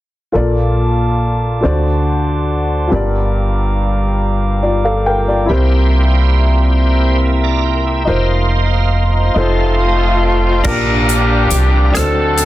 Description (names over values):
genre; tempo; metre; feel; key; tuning
slow gospel; 46 BPM (dotted quarters); 6/8; straight; Bb major; A4 = 440 Hz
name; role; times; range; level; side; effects
warm upright piano; accompaniment; 0.3-12.4 s; G2 to A5; -18 LUFS; left 2 dB; none
glass harmonica; sustained chords; 0.3-10.6 s; Eb5 to D6; -23 LUFS; right 2 dB; none
upright bass; bass; 0.4-12.4 s; F1 to D2; -14 LUFS; equal; none
bright tonewheel organ; sustained chords; 5.5-12.4 s; F3 to Bb5; -22 LUFS; right 3 dB; slow rotary speaker, overdrive, chorus vibrato
warm saxophone section; melody; 9.4-12.4 s; A3 to A4; -17 LUFS; left 2 dB; none
twangy electric guitar; melody; 10.6-12.4 s; A4 to Bb4; -20 LUFS; right 4 dB; tremolo, tape echo
modern studio drum kit; drums; 10.6-12.4 s; crash cymbal, hi-hat, kick drum, rim click; -19 LUFS; left 2 dB; soft clipping on snare
room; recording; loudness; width
light reverb, small room ambience; dense, heavily limited modern master; -12 LUFS; side -15 dB against mid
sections
0.3-10.7 A section; 10.7-12.4 B section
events
tonewheel organ fill 9.4-10.7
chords
0.3 Bbmaj7; 1.6 D7; 2.9 Gm7; 5.5 C7; 8.1 F7sus4; 9.4 F7; 10.7 Bbmaj7; 11.9 D7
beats
| 0.34 1.63 | 2.92 4.21 | 5.50 6.78 | 8.07 9.36 | 10.65 11.94